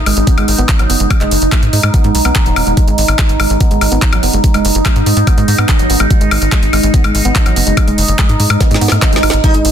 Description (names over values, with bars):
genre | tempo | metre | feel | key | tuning
psychedelic trance | 144 BPM | 4/4 | straight | G# minor | A4 = 440 Hz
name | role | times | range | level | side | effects
overtone-sweeping drone | sustained chords | 0.0-9.7 s | D#4 | -17 LUFS | right 2 dB | chorus, built-in reverb, sidechain pumping
tight sequencer bass | bass | 0.0-9.7 s | D#1 to G#2 | -14 LUFS | equal | none
woody wave-folded pluck | riff | 0.1-9.6 s | F#3 to D#4 | -19 LUFS | moving between left 2 dB and right 5 dB | chorus, auto-pan, sidechain pumping, ping-pong delay
drum and bass drum kit | drums | 0.1-9.7 s | handclaps, hi-hat, snare drum, woodblock | -16 LUFS | left 2 dB | overdrive, studio reverb
electronic kick drum | drums | 0.3-9.5 s | none | -12 LUFS | equal | overdrive, studio reverb
sitar | melody | 9.4-9.6 s | D#4 | -14 LUFS | equal | phaser, sidechain pumping
room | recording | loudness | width
digital ambience | dense, heavily limited modern master | -9 LUFS | side -9 dB against mid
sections
0.0-9.7 A section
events
drum fill 8.6-9.4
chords
0.0 G#5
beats
0.27 0.69 | 1.10 1.52 1.94 2.35 | 2.77 3.19 3.60 4.02 | 4.44 4.86 5.27 5.69 | 6.11 6.52 6.94 7.36 | 7.77 8.19 8.61 9.02 | 9.44